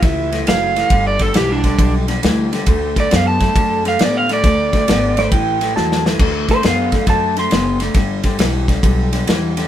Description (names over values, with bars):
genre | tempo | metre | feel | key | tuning
electric blues shuffle | 136 BPM | 4/4 | swing 66% on 8ths | D mixolydian | A4 = 440 Hz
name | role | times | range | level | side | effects
clean lap steel guitar | second line | 0.0-0.4, 5.2-7.8 s | C5 to C6 | -19 LUFS | right 2 dB | none
electric guitar through a small old amp | riff | 0.0-9.7 s | G2 to B3 | -20 LUFS | left 2 dB | none
upright bass | bass | 0.0-9.6 s | F#1 to A2 | -21 LUFS | equal | none
natural country drum kit | drums | 0.0-9.6 s | crash cymbal, kick drum, ride cymbal, snare drum | -17 LUFS | equal | none
crunchy overdriven guitar | melody | 0.5-5.3 s | D4 to A5 | -17 LUFS | right 3 dB | none
room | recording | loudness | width
light reverb | band playing live in one room | -13 LUFS | side -11 dB against mid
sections
0.0-6.2 A section; 6.2-9.7 B section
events
drum fill 5.8-6.2; electric slide guitar solo 6.2-9.7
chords
0.0 A; 0.9 G; 2.7 D; 5.3 A5; 6.2 D7; 8.0 G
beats
0.04 0.47 | 0.92 1.35 1.79 2.23 | 2.67 3.12 3.56 4.00 | 4.43 4.88 5.32 5.75 | 6.20 6.63 7.07 7.51 | 7.95 8.39 8.83 9.27